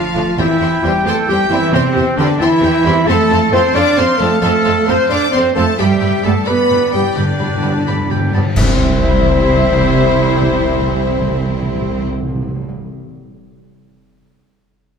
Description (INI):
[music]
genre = cinematic, heroic adventure film score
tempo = 88 BPM (dotted quarters)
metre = 6/8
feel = straight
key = C major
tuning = A4 = 439 Hz
[part]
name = rich studio violin section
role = melody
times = 0.0-12.1 s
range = C5 to D6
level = -25 LUFS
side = left 2 dB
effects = none
[part]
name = clear oboe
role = second line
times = 0.0-12.1 s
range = D5 to B5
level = -24 LUFS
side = right 1 dB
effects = none
[part]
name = rich studio violin section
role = second line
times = 0.0-12.1 s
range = E4 to C6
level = -27 LUFS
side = left 3 dB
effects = none
[part]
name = warm clarinet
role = second line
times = 0.0-12.0 s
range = C4 to D5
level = -24 LUFS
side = left 1 dB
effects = none
[part]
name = rich symphonic viola section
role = accompaniment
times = 0.0-12.1 s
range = G3 to A4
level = -24 LUFS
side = equal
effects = none
[part]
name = dark French horn section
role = sustained chords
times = 0.0-12.1 s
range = C4 to D5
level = -19 LUFS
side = left 4 dB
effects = none
[part]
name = dark trumpet section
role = stabs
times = 0.0-12.1 s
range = C4 to D5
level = -22 LUFS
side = right 2 dB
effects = none
[part]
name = rich symphonic cello section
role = bass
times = 0.0-12.1 s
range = C3 to D4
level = -19 LUFS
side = right 3 dB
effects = none
[part]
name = rich symphonic double bass section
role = bass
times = 0.1-12.1 s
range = C2 to G2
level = -20 LUFS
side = right 3 dB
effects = none
[part]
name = warm trombone section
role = sustained chords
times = 0.2-12.1 s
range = F3 to E4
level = -25 LUFS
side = right 1 dB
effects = none
[part]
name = cymbal swell, clash cymbals and concert bass drum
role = percussion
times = 5.8-9.4 s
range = none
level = -21 LUFS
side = left 1 dB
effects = none
[part]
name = timpani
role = percussion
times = 5.8-12.8 s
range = G2 to C3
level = -21 LUFS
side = equal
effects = none
[sound]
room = wet scoring stage reverb, RT60 1.9 s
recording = none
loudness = -12 LUFS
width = side -6 dB against mid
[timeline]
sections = 0.0-8.6 A section; 8.6-11.3 B section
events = timpani fill 5.8-8.6; band accent 8.6-9.0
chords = 0.4 C/E; 3.1 F; 5.8 G; 8.6 C